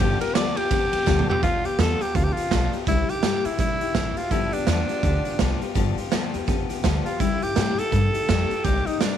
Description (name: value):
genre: rockabilly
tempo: 166 BPM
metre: 4/4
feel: swing 61% on 8ths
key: G mixolydian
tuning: A4 = 441 Hz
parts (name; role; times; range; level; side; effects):
- raspy tenor saxophone; melody; 0.0-9.2 s; D4 to D5; -26 LUFS; equal; none
- picked steel-string acoustic guitar; accompaniment; 0.0-9.2 s; G2 to G4; -27 LUFS; left 13 dB; none
- upright bass; bass; 0.0-9.2 s; G1 to Bb2; -26 LUFS; equal; none
- raw garage drum kit; drums; 0.0-9.1 s; hi-hat, kick drum, ride cymbal, snare drum, toms; -25 LUFS; right 4 dB; none
room: little or no reverb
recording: 1960s-style stereo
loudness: -20 LUFS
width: side -10 dB against mid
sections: 0.0-1.4 A section; 1.4-9.2 B section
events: tenor saxophone solo 0.0-1.4; drum fill 1.1-1.4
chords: 0.0 G7; 2.9 C7; 4.3 G7; 7.2 C7; 8.6 Cm7